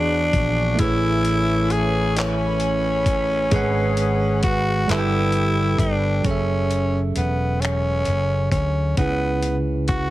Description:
slow six-eight R&B; 44 BPM (dotted quarters); 6/8; straight; F# minor; A4 = 441 Hz
growling tenor saxophone; melody; 0.0-10.1 s; B3 to G#4; -23 LUFS; equal
bell-like tine electric piano; accompaniment; 0.0-10.1 s; C#3 to G5; -25 LUFS; right 4 dB
chorused pulse-width pad; sustained chords; 0.0-6.2 s; A3 to C#6; -32 LUFS; left 1 dB
warm horn section; stabs; 0.0-5.8 s; D3 to B4; -31 LUFS; left 4 dB
fretless electric bass; bass; 0.0-10.1 s; E1 to E2; -23 LUFS; left 1 dB
dusty soul sampler-style drum kit; drums; 0.3-10.1 s; finger snaps, handclaps, hi-hat, kick drum; -24 LUFS; left 1 dB
light reverb; heavily compressed radio sound; -18 LUFS; side -16 dB against mid
0.0-6.2 A section; 6.2-10.1 B section
0.0 E13; 0.8 Amaj9; 3.5 G#m7b5; 4.9 Gadd9; 6.2 F#m7; 9.0 C#m7
| 0.79 2.15 | 3.52 4.88 | 6.24 7.61 | 8.97

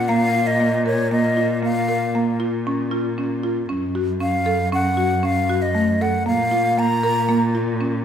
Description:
contemporary instrumental, chamber music in an uneven meter; 116 BPM; 5/4; straight; Bb harmonic minor; A4 = 440 Hz
breathy jazz flute; melody; 0.0-7.6 s; Db5 to Bb5; -21 LUFS; left 1 dB
rich cello; bass; 0.0-8.0 s; Gb2 to Bb2; -23 LUFS; left 2 dB
buzzing marimba with medium mallets; arpeggios; 0.1-8.0 s; A3 to Bb4; -22 LUFS; right 2 dB
wet recital hall reverb, RT60 1.4 s; minimal, uncompressed stereo recording; -18 LUFS; side -8 dB against mid
0.0-8.0 A section
0.0 Bb5; 3.7 Gbm; 6.3 Bb5
0.09 0.60 | 1.12 1.63 2.15 2.66 3.18 | 3.69 4.21 4.72 5.24 5.75 | 6.26 6.78 7.29 7.81

